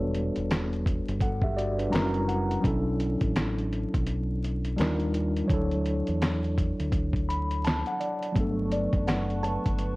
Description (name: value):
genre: lo-fi hip hop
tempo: 84 BPM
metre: 4/4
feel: swing 62% on 16ths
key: unclear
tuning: A4 = 440 Hz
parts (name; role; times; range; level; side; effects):
- kalimba; melody; 0.0-1.0, 8.7-10.0 s; B4 to A5; -35 LUFS; right 1 dB; low-pass filter
- mellow tine electric piano; accompaniment; 0.0-10.0 s; F#3 to B5; -29 LUFS; equal; medium stereo tremolo, cassette tape, low-pass filter
- deep dub fingered electric bass; bass; 0.0-10.0 s; E1 to E2; -30 LUFS; equal; transformer saturation
- dusty soul sampler-style drum kit; drums; 0.1-10.0 s; handclaps, hi-hat, kick drum, snare drum; -29 LUFS; equal; overdrive, vintage 12-bit sampler grit
- hollow soft pad; sustained chords; 8.4-10.0 s; B4 to C#6; -39 LUFS; right 1 dB; chorus, low-pass filter
room: light reverb, digital ambience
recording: worn, warbling old tape, cassette tape, vinyl crackle, warbly pitch drift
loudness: -25 LUFS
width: side -21 dB against mid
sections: 0.0-10.0 A section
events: tine electric piano fill 1.6-2.6, 6.9-8.4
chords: 0.0 Em11; 1.9 F#7b9; 2.6 Bm11; 4.8 D#maj7; 5.5 Dmaj7; 8.4 Gmaj9#11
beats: 0.50 1.21 1.93 | 2.64 3.35 4.07 4.78 | 5.50 6.21 6.93 7.64 | 8.36 9.07 9.78